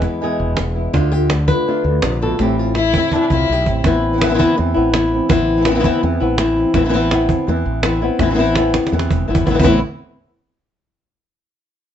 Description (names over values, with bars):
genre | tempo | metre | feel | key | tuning
flamenco | 166 BPM | 4/4 | straight | A minor | A4 = 440 Hz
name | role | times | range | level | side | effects
flamenco guitar | melody | 0.0-9.8 s | E2 to B4 | -17 LUFS | left 3 dB | none
flamenco guitar | stabs | 0.0-9.8 s | A2 to F4 | -23 LUFS | right 2 dB | none
mellow fretless electric bass | bass | 0.0-9.8 s | E1 to E2 | -20 LUFS | equal | lush chorus
cajon | percussion | 0.0-9.7 s | none | -20 LUFS | right 2 dB | none
rich violin | second line | 2.8-3.8 s | D4 to E4 | -20 LUFS | left 5 dB | none
room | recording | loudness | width
light reverb | nothing above 8.0 kHz | -14 LUFS | side -10 dB against mid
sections
0.0-3.8 A section; 3.8-9.6 B section; 9.6-11.1 C section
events
drum fill 2.4-3.8, 8.7-9.6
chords
0.0 E; 0.9 Dm; 2.4 Am7; 3.8 Amadd9